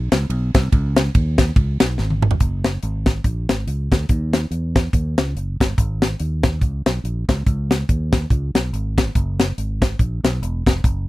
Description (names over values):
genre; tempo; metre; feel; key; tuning
uptempo gospel; 142 BPM; 4/4; swing 58% on 8ths; F# major; A4 = 440 Hz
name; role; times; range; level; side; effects
fingered electric bass; bass; 0.0-11.1 s; E1 to E2; -22 LUFS; equal; none
tight funk drum kit; drums; 0.1-11.0 s; hi-hat, kick drum, ride cymbal, snare drum, toms; -17 LUFS; equal; none
room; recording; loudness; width
little or no reverb; dry, close 1970s-style studio recording; -17 LUFS; side -18 dB against mid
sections
0.0-2.4 A section; 2.4-11.1 B section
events
drum fill 2.0-2.4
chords
none